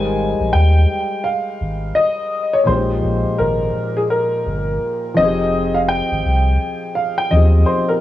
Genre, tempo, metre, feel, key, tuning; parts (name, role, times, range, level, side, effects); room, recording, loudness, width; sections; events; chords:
lo-fi hip hop; 84 BPM; 4/4; swing 62% on 16ths; F minor; A4 = 440 Hz
dark upright piano; melody; 0.0-7.9 s; Ab4 to Ab5; -19 LUFS; left 1 dB; low-pass filter, tape echo
felt-muted upright piano; accompaniment; 0.0-8.0 s; Bb2 to C5; -21 LUFS; left 2 dB; cassette tape, low-pass filter
warm sub bass; bass; 0.0-7.6 s; F1 to Eb2; -17 LUFS; equal
light reverb, small room ambience; worn, warbling old tape, cassette tape, warbly pitch drift; -15 LUFS; side -13 dB against mid
0.0-8.0 A section
0.0 Abmaj9; 2.7 Bb13sus4; 5.2 Fm9